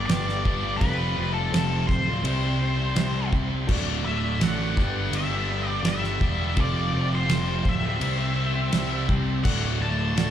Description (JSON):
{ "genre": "classic rock", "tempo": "83 BPM", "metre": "4/4", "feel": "straight", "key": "unclear", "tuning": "A4 = 440 Hz", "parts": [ { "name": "octave-fuzz lead guitar", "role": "melody", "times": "0.0-10.3 s", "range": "A4 to A5", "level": "-30 LUFS", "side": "left 1 dB", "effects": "distortion" }, { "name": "fingerpicked twelve-string acoustic guitar", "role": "accompaniment", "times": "0.0-10.3 s", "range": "C3 to C5", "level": "-41 LUFS", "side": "right 2 dB", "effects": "none" }, { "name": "tonewheel organ", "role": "sustained chords", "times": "0.0-10.3 s", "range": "G3 to E5", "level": "-40 LUFS", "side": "equal", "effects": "none" }, { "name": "crunchy overdriven guitar", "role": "riff", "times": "0.0-10.3 s", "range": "D2 to C5", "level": "-31 LUFS", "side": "right 9 dB", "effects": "none" }, { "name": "distorted electric guitar", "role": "riff", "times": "0.0-10.3 s", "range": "D2 to C4", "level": "-31 LUFS", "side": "left 13 dB", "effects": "overdrive" }, { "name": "fuzz picked electric bass", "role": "bass", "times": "0.0-10.3 s", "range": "D1 to C2", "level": "-27 LUFS", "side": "equal", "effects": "overdrive" }, { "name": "reed electric piano", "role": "accompaniment", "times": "0.1-10.3 s", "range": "C4 to F#5", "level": "-41 LUFS", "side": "left 2 dB", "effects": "none" }, { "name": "damped 70s drum kit", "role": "drums", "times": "0.1-10.3 s", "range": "crash cymbal, kick drum, ride cymbal, snare drum", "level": "-28 LUFS", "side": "equal", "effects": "none" } ], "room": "little or no reverb", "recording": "live gig heard through the venue's PA, club reverb", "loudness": "-22 LUFS", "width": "side -10 dB against mid", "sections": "0.0-10.3 A section", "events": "none", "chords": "0.0 G; 0.8 Fadd9; 2.3 C; 3.7 D; 4.8 G; 6.6 Fadd9; 8.0 C; 9.5 D" }